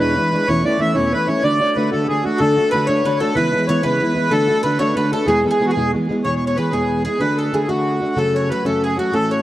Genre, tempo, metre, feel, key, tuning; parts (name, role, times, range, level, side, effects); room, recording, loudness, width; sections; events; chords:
celtic folk, Celtic jig; 125 BPM (dotted quarters); 6/8; straight; A4 = 439 Hz
accordion; melody; 0.0-9.4 s; F#4 to E5; -20 LUFS; equal; analog delay
baroque flute; second line; 0.0-9.4 s; F#4 to E5; -26 LUFS; left 6 dB
fingerpicked plugged-in steel-string acoustic guitar; accompaniment; 0.0-9.4 s; E2 to A4; -19 LUFS; equal; analog delay
mandolin; second line; 2.4-9.4 s; F#4 to C#5; -27 LUFS; right 2 dB; analog delay
light reverb, studio reverb; echo-heavy mix, vinyl crackle; -15 LUFS; side -14 dB against mid
0.0-6.2 A section; 6.2-9.4 B section
0.5 Aadd9/E; 1.4 D; 3.4 C#m7; 4.3 D; 5.3 E; 7.2 D; 8.2 F#m